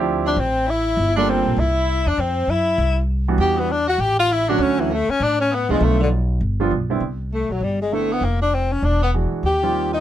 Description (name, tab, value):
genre	jazz, small-group swing and bop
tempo	199 BPM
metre	4/4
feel	swing 61% on 8ths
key	unclear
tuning	A4 = 440 Hz
part	warm grand piano	accompaniment	0.0-10.0 s	D3 to A4	-22 LUFS	right 6 dB	none
part	upright bass	bass	0.0-10.0 s	E1 to A2	-22 LUFS	equal	none
part	breathy tenor saxophone	melody	0.3-10.0 s	D3 to G4	-20 LUFS	left 4 dB	none
part	bright tenor saxophone	second line	0.3-10.0 s	D3 to G4	-27 LUFS	right 5 dB	none
room	little or no reverb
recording	close, detailed microphones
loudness	-17 LUFS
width	side -11 dB against mid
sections	0.0-7.0 A section; 7.0-10.0 B section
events	none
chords	0.0 Dm11; 1.0 Gm9; 1.6 Cadd9; 2.2 F5; 3.4 Em9; 4.0 A; 4.6 Dmaj7; 5.8 Bm7b5; 6.4 G7; 7.0 Cmaj9; 8.2 Bbmadd9/F; 8.8 E9; 9.4 Eb69